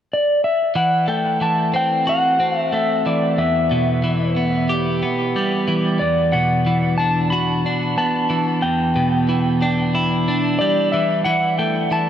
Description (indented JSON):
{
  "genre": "rock",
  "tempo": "91 BPM",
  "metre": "4/4",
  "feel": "straight",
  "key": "unclear",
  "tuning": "A4 = 440 Hz",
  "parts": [
    { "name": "clean lap steel guitar", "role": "melody", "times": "0.1-12.1 s", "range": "D5 to B5", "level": "-20 LUFS", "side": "equal", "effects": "analog delay" },
    { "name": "twelve-string electric guitar", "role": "arpeggios", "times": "0.8-12.1 s", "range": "E2 to G4", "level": "-19 LUFS", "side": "equal", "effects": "analog delay" },
    { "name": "vibraphone with hard mallets", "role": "arpeggios", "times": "11.3-12.1 s", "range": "D5 to E5", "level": "-28 LUFS", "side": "right 10 dB", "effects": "analog delay" }
  ],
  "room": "moderate huge ambient reverb, RT60 7.0 s",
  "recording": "none",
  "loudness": "-16 LUFS",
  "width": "side -9 dB against mid",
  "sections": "0.8-11.3 A section",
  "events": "none",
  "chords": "0.0 N.C.; 0.8 F#m7b5/E; 3.4 Em; 6.0 Bm/E; 8.6 G/E; 11.3 F#m7/E"
}